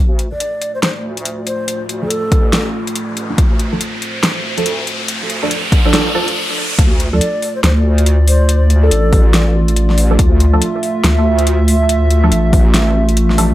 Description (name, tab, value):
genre	deep dubstep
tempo	141 BPM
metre	4/4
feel	swing 62% on 16ths, half-time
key	D minor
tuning	A4 = 442 Hz
part	dark analog pad	sustained chords	0.0-13.5 s	A3 to E5	-20 LUFS	right 1 dB	chorus
part	wobble bass	bass	0.0-13.5 s	A1 to F2	-14 LUFS	equal	chorus, high-pass filter
part	riser	sound effects	1.8-6.8 s	none	-22 LUFS	equal	none
part	deep house drum kit	drums	0.2-13.5 s	hi-hat, snare drum	-18 LUFS	left 1 dB	overdrive
part	breathy low ney	melody	0.3-2.6, 7.1-9.4 s	A4 to D5	-22 LUFS	left 1 dB	dub echo
part	filtered dub chord stab	stabs	0.3-13.5 s	F3 to A4	-20 LUFS	right 2 dB	phaser, analog chorus, cassette tape, dub echo
part	electronic kick drum	drums	2.3-12.6 s	none	-13 LUFS	equal	overdrive
room	light reverb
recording	none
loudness	-12 LUFS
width	side -15 dB against mid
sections	0.0-6.8 A section; 6.8-13.5 B section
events	build-up 0.0-6.8; filter sweep on synth stab 0.0-6.8; riser 1.8-6.8; break 6.4-6.8; drop 6.8-13.5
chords	0.0 Dm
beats	0.40 0.83 1.25 | 1.68 2.11 2.53 2.96 | 3.38 3.81 4.23 4.66 | 5.08 5.51 5.93 6.36 | 6.79 7.21 7.64 8.06 | 8.49 8.91 9.34 9.77 | 10.19 10.62 11.04 11.47 | 11.89 12.32 12.74 13.17